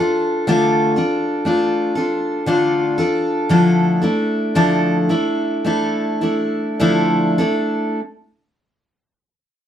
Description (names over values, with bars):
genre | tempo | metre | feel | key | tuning
folk | 49-62 BPM | 4/4 | straight | D minor | A4 = 440 Hz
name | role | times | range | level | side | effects
picked steel-string acoustic guitar | accompaniment | 0.0-8.0 s | D3 to A4 | -15 LUFS | equal | none
room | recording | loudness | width
wet studio reverb, RT60 0.5 s | none | -15 LUFS | side -10 dB against mid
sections
0.0-8.0 A section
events
slowing down 0.0-8.0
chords
0.0 Dm; 3.5 Dmadd9